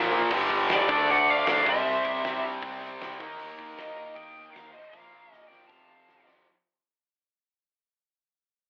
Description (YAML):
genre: hard rock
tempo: 156 BPM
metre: 4/4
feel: straight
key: unclear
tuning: A4 = 440 Hz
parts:
  - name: distorted electric guitar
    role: riff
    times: 0.0-6.5 s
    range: F2 to Eb4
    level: -35 LUFS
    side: equal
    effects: overdrive
  - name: heavy high-gain guitar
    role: riff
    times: 0.0-6.5 s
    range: F2 to Eb4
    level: -33 LUFS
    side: equal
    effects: distortion
  - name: overdriven semi-hollow guitar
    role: riff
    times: 0.0-6.5 s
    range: F2 to Eb4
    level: -37 LUFS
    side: equal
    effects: none
  - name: fingered electric bass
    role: bass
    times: 0.0-6.4 s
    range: F1 to Bb2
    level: -54 LUFS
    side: equal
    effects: none
  - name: gated 80s drum kit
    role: drums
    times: 0.1-6.4 s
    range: crash cymbal, hi-hat, kick drum, snare drum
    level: -35 LUFS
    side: equal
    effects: none
  - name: high-gain lead guitar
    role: melody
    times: 0.7-6.3 s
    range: D5 to A5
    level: -29 LUFS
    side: equal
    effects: distortion
  - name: octave-fuzz lead guitar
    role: second line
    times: 0.7-6.3 s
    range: A4 to F5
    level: -36 LUFS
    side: equal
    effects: distortion
room: moderate large studio reverb, RT60 0.9 s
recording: band playing live in one room, telephone sound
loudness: -25 LUFS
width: mono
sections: 0.0-6.5 A section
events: fade-out 0.0-6.5; drum fill 4.9-6.5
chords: 0.3 G5; 0.9 D5; 1.7 C; 3.2 Eb; 4.9 Bb5; 5.7 F